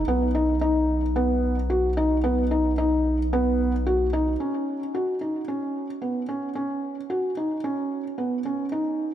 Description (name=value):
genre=piano and strings electronica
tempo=111 BPM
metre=4/4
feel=straight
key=unclear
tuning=A4 = 440 Hz
part: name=round analog bass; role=bass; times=0.0-4.4 s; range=B1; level=-26 LUFS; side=equal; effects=none
part: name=felt-muted upright piano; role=riff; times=0.1-9.1 s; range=B3 to F#4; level=-23 LUFS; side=equal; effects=ping-pong delay
room=moderate lush hall reverb, RT60 3.0 s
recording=none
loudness=-22 LUFS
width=side -11 dB against mid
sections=0.0-4.4 A section; 4.4-9.1 B section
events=none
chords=0.1 B; 4.4 Badd9 (rootless)